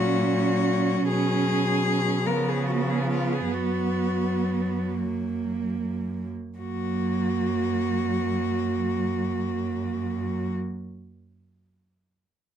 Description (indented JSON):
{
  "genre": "classical, lyrical piece for cello ensemble",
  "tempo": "36-57 BPM (dotted quarters)",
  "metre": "6/8",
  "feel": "rubato",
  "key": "F# major",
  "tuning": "A4 = 440 Hz",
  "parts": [
    { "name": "rich cello", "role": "melody", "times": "0.0-10.5 s", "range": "E#4 to A#4", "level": "-29 LUFS", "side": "left 6 dB", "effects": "none" },
    { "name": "rich cello", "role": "second line", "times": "0.0-10.5 s", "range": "A#3 to C#4", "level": "-28 LUFS", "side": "right 7 dB", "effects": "none" },
    { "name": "warm cello", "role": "accompaniment", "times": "0.0-10.5 s", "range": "E#3 to F#3", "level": "-31 LUFS", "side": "left 2 dB", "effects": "none" },
    { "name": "rich cello", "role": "bass", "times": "0.0-10.5 s", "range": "F#2 to C#3", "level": "-30 LUFS", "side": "right 1 dB", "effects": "none" }
  ],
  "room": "moderate studio reverb, RT60 0.5 s",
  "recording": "none",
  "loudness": "-24 LUFS",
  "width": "side -9 dB against mid",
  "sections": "0.0-6.6 A section; 6.6-9.8 B section",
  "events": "slowing down 0.0-6.6",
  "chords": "0.0 F#/A#; 1.1 G#m7/B; 2.3 C#7; 3.5 F#",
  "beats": "| 1.07 2.25 | 3.53 4.97 | 6.58 8.17"
}